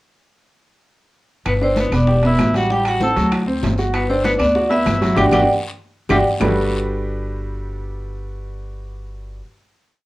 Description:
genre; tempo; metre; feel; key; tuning
Afro-Cuban jazz; 194 BPM; 4/4; straight; G major; A4 = 440 Hz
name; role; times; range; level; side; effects
vibraphone with medium hard mallets; melody; 1.5-6.2 s; B4 to A5; -19 LUFS; equal; none
clear tenor saxophone; second line; 1.5-6.2 s; B3 to A4; -22 LUFS; left 1 dB; none
upright bass; bass; 1.5-9.4 s; E1 to D2; -22 LUFS; equal; none
bongos; percussion; 1.5-6.5 s; none; -29 LUFS; left 4 dB; none
claves; percussion; 1.5-6.5 s; none; -32 LUFS; right 2 dB; none
congas; percussion; 1.5-6.5 s; none; -27 LUFS; left 1 dB; none
guiro; percussion; 1.5-6.5 s; none; -36 LUFS; left 4 dB; none
timbales; percussion; 1.5-6.5 s; none; -28 LUFS; right 3 dB; none
warm baby grand piano; accompaniment; 1.6-9.4 s; F#3 to G5; -22 LUFS; right 1 dB; none
room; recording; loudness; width
wet club reverb, RT60 0.5 s; worn, warbling old tape, cassette tape, warbly pitch drift; -15 LUFS; side -18 dB against mid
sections
1.5-6.4 A section; 6.4-8.9 final chord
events
drum fill 5.2-6.4; band accent 5.2-6.4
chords
1.5 G; 2.1 Em; 2.7 Am7; 3.3 D7; 3.9 Gmaj7; 6.4 Gmaj9

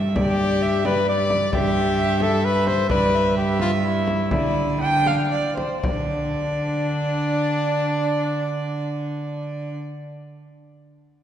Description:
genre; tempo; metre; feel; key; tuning
classical, renaissance-style consort dance; 114-132 BPM; 3/4; straight; unclear; A4 = 440 Hz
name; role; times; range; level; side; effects
warm violin; second line; 0.0-9.7 s; C5 to G5; -26 LUFS; right 3 dB; none
dark cello; bass; 0.0-9.8 s; G2 to D3; -24 LUFS; equal; none
warm cornet; melody; 0.2-9.8 s; D4 to D5; -24 LUFS; left 2 dB; none
frame drum; percussion; 0.2-6.1 s; none; -29 LUFS; left 1 dB; none
room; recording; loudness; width
wet church reverb, RT60 2.9 s; heard from further back in the room, nothing above 10.7 kHz; -19 LUFS; side -10 dB against mid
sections
0.0-5.8 A section; 5.8-9.0 B section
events
slowing down 2.2-5.8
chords
0.0 G5; 4.3 N.C.

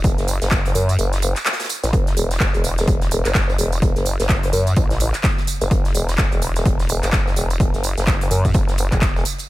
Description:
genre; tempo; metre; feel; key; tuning
bass house; 127 BPM; 4/4; swing 59% on 16ths; F# minor; A4 = 441 Hz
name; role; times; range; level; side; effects
vowel-sweep wobble bass; bass; 0.0-9.2 s; E1 to F#2; -20 LUFS; equal; chorus, tube saturation, sidechain pumping
electronic kick drum; drums; 0.0-9.1 s; none; -19 LUFS; equal; overdrive, small room ambience
house drum kit; drums; 0.0-9.5 s; handclaps, hi-hat, tambourine; -24 LUFS; right 1 dB; small room ambience
modern studio drum kit; drums; 0.0-9.5 s; hi-hat, snare drum; -34 LUFS; right 1 dB; sidechain pumping on hats, high-pass filter on hats, small room ambience, high-pass filter on snare, high-pass filter on room
room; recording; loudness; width
little or no reverb; none; -16 LUFS; side -17 dB against mid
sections
0.0-9.5 A section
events
kick drops out 1.0-1.9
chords
none

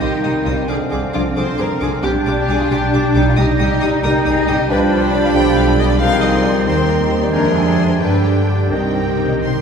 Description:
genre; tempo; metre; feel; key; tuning
quick classical-period movement for symphony orchestra; 90 BPM (dotted quarters); 6/8; rubato; C minor; A4 = 440 Hz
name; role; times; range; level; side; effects
clear chamber violin section; melody; 0.0-9.6 s; G5 to Eb6; -29 LUFS; left 2 dB; none
bright oboe; second line; 0.0-9.6 s; F5 to Ab5; -27 LUFS; left 1 dB; none
clear clarinet; second line; 0.0-9.6 s; C4 to Eb4; -24 LUFS; left 2 dB; none
rich chamber violin section; second line; 0.0-9.4 s; C4 to G5; -23 LUFS; left 2 dB; none
clear symphonic viola section; accompaniment; 0.0-9.6 s; D3 to C5; -23 LUFS; right 1 dB; none
warm bassoon; accompaniment; 0.0-9.6 s; C3 to G3; -23 LUFS; right 1 dB; none
clear chamber cello section; bass; 0.0-9.6 s; C4 to Eb4; -22 LUFS; right 3 dB; none
clear chamber double bass section; bass; 0.0-9.6 s; B1 to G2; -19 LUFS; right 1 dB; none
mellow French horn section; sustained chords; 0.5-9.6 s; F3 to F4; -23 LUFS; left 3 dB; none
timpani; percussion; 8.7-9.6 s; C3; -27 LUFS; left 2 dB; none
room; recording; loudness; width
wet concert hall reverb, RT60 2.3 s; heard from further back in the room; -13 LUFS; side -6 dB against mid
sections
0.0-9.6 A section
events
timpani fill 8.7-9.6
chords
0.0 Cm; 0.7 Dm7b5/C; 2.0 G/B; 3.4 Cm; 4.7 G7/C; 6.0 Cm; 6.7 Cm/Eb; 7.3 Dm7b5/F; 8.0 G5; 8.7 Cm

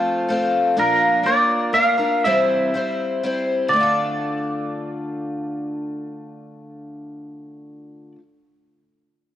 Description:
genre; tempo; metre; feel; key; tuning
rock; 122 BPM; 3/4; straight; D minor; A4 = 441 Hz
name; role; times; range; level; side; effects
picked twelve-string acoustic guitar; accompaniment; 0.0-8.2 s; Bb2 to C5; -22 LUFS; left 1 dB; cassette tape
twangy electric guitar; melody; 0.8-8.1 s; Bb4 to F5; -19 LUFS; right 1 dB; spring reverb, cassette tape
room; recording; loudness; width
moderate lush hall reverb, RT60 2.5 s; home recording on cassette; -18 LUFS; side -11 dB against mid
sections
0.0-3.7 A section; 3.7-6.7 B section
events
none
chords
0.0 F; 0.8 Bb; 2.2 C; 3.7 Dm

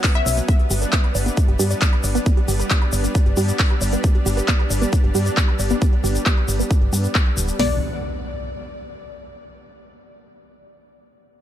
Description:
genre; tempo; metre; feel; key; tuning
uplifting trance; 135 BPM; 4/4; straight; unclear; A4 = 439 Hz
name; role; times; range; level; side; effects
lush unison pad; sustained chords; 0.0-7.8 s; B2 to F#5; -28 LUFS; equal; chorus, sidechain pumping
wide unison pluck; arpeggios; 0.0-7.8 s; B3 to B5; -28 LUFS; right 2 dB; sidechain pumping, dub echo
big-room dance drum kit; drums; 0.0-7.7 s; hi-hat, kick drum, snare drum; -17 LUFS; equal; none
big-room dance drum kit; drums; 0.0-7.6 s; handclaps, hi-hat; -26 LUFS; left 1 dB; low-pass filter on hats, low-pass filter on snare, low-pass filter on room
egg shaker; percussion; 0.0-7.6 s; none; -29 LUFS; left 3 dB; none
wide unison pluck; melody; 0.2-0.4, 7.6-7.8 s; D5 to E5; -29 LUFS; moving between left 7 dB and equal; auto-pan, sidechain pumping, dub echo
solid FM bass; bass; 0.3-7.8 s; D1 to G2; -21 LUFS; equal; sidechain pumping
impact; sound effects; 7.7-9.4 s; none; -31 LUFS; equal; none
room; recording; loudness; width
little or no reverb; none; -17 LUFS; side -11 dB against mid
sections
0.0-7.6 A section; 7.6-9.4 B section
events
filter sweep on FM bass 0.0-7.6; filter sweep on synth arpeggio sound 0.0-7.6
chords
0.5 G; 7.6 Bm

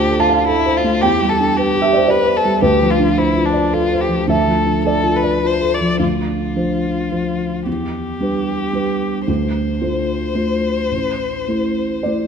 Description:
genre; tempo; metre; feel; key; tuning
neoclassical piano and strings; 104-112 BPM; 3/4; rubato; D dorian; A4 = 440 Hz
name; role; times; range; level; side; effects
rich violin; melody; 0.0-12.3 s; D4 to D5; -20 LUFS; left 4 dB; none
felt-muted upright piano; accompaniment; 0.0-12.3 s; A1 to A5; -16 LUFS; right 1 dB; none
room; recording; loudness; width
moderate concert hall reverb, RT60 2.1 s; minimal, uncompressed stereo recording; -15 LUFS; side -6 dB against mid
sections
0.0-6.0 A section; 6.0-12.3 B section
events
none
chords
0.0 Dm7; 1.0 Em7; 2.6 Dm7; 4.3 Dm; 6.0 Dm7; 7.7 Em7; 9.3 Dm7; 10.9 Am

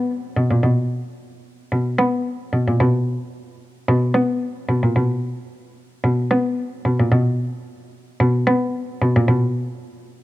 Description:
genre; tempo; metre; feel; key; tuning
funk; 111 BPM; 4/4; straight; unclear; A4 = 440 Hz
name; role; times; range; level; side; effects
rich cello; solo; 0.4-9.6 s; A#2 to B3; -18 LUFS; equal; none
room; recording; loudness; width
light reverb, studio ambience; dry, close 1970s-style studio recording; -18 LUFS; side -16 dB against mid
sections
0.0-10.2 A section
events
none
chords
none

